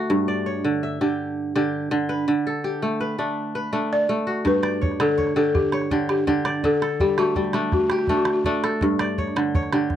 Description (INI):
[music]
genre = west african traditional, West African string and xylophone music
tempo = 110 BPM (dotted quarters)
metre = 12/8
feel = straight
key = G lydian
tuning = A4 = 440 Hz
[part]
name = kora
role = arpeggios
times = 0.0-10.0 s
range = G2 to E5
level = -22 LUFS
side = right 1 dB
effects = none
[part]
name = balafon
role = melody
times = 3.9-8.4 s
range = F#4 to D5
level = -22 LUFS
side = left 2 dB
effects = none
[part]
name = calabash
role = percussion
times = 4.5-10.0 s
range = none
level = -27 LUFS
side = right 2 dB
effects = none
[sound]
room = little or no reverb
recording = dry, close 1970s-style studio recording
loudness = -20 LUFS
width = side -10 dB against mid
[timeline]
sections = 0.0-4.5 A section; 4.5-10.0 A section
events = none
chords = 0.1 G; 2.3 D5; 4.5 G; 6.6 D; 8.8 G5